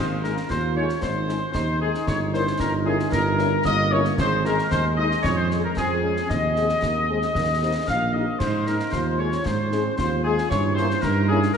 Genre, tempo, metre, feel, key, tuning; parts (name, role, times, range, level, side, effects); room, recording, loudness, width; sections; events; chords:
military-style march for wind band; 114 BPM; 2/4; straight; Ab major; A4 = 444 Hz
dark trumpet section; melody; 0.0-11.4 s; Ab4 to F5; -27 LUFS; left 1 dB
clear woodwind section; second line; 0.0-11.6 s; Ab4 to F5; -27 LUFS; left 3 dB
dark tuba; bass; 0.0-11.5 s; G1 to Ab2; -25 LUFS; right 2 dB
warm French horn section; accompaniment; 0.2-11.4 s; Ab3 to Bb4; -30 LUFS; left 6 dB
concert snare drum, concert bass drum and clash cymbals; drums; 0.2-11.6 s; -31 LUFS; left 1 dB
mellow trombone section; sustained chords; 0.5-11.6 s; Ab3 to F4; -31 LUFS; right 3 dB
wet concert hall reverb, RT60 2.2 s; nothing above 10.9 kHz; -20 LUFS; side -7 dB against mid
0.0-11.6 A section
0.0 Ab; 2.1 Gdim7; 4.2 Ab5; 5.2 Db/F; 6.3 Ab/Eb; 7.4 Eb; 8.4 Ab; 10.5 Gdim7